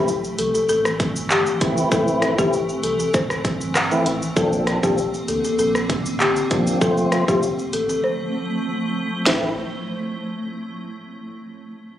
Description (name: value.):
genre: dancehall.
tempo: 98 BPM.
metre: 4/4.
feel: straight.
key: A phrygian.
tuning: A4 = 442 Hz.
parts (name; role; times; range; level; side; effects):
folk marimba with medium mallets; melody; 0.0-9.5 s; G4 to C5; -23 LUFS; left 2 dB; tape echo.
tonewheel organ; accompaniment; 0.0-9.5 s; E3 to F4; -22 LUFS; equal; slow rotary speaker.
granular cloud pad; sustained chords; 0.1-9.6 s; D3 to C4; -27 LUFS; right 1 dB; built-in reverb, sidechain pumping.
sub bass with octave; bass; 0.0-9.5 s; F1 to D2; -31 LUFS; equal; none.
island pop drum kit; drums; 0.1-9.4 s; handclaps, hi-hat, kick drum, rim click, shaker, snare drum, toms; -23 LUFS; equal; none.
room: light reverb.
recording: recorded on a phone in the room, club reverb.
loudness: -18 LUFS.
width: side -11 dB against mid.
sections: 0.0-9.3 A section; 9.3-11.7 B section.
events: break 8.0-9.3.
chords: 0.0 Am; 4.4 Bbadd9; 6.8 F; 9.3 Am.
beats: 0.08 0.69 1.30 | 1.92 2.53 3.14 3.75 | 4.37 4.98 5.59 6.20 | 6.82 7.43 8.04 8.65 | 9.26.